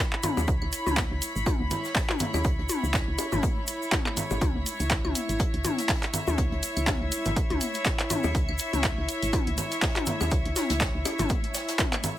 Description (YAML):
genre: minimal techno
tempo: 122 BPM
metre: 4/4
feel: swing 56% on 16ths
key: C# minor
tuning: A4 = 441 Hz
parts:
  - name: egg shaker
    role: percussion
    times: 0.0-12.1 s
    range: none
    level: -37 LUFS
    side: right 2 dB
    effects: none
  - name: clear studio string section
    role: texture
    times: 0.0-12.2 s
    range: E4 to B5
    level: -32 LUFS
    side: equal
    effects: sidechain pumping
  - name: punchy analog drum machine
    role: drums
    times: 0.1-12.1 s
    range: handclaps, hi-hat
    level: -28 LUFS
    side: equal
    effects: none
  - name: jazz brush drum kit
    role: drums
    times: 0.2-12.2 s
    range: hi-hat, snare drum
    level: -39 LUFS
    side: left 2 dB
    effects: none
  - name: electronic toms, congas, bongos and claves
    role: percussion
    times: 0.2-12.1 s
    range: none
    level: -31 LUFS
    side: left 2 dB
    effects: overdrive, dub echo
  - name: woody FM bass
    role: bass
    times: 0.4-11.3 s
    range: G#1 to D#2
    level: -30 LUFS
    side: equal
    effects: sidechain pumping
  - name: electronic kick drum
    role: drums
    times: 0.5-11.9 s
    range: none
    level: -28 LUFS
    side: equal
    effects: none
room: light reverb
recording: none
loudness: -24 LUFS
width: side -13 dB against mid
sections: 0.0-12.2 A section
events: none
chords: 0.0 C#m7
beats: | 0.48 0.97 1.46 1.96 | 2.45 2.94 3.43 3.92 | 4.41 4.91 5.40 5.89 | 6.38 6.87 7.37 7.86 | 8.35 8.84 9.33 9.82 | 10.31 10.81 11.30 11.79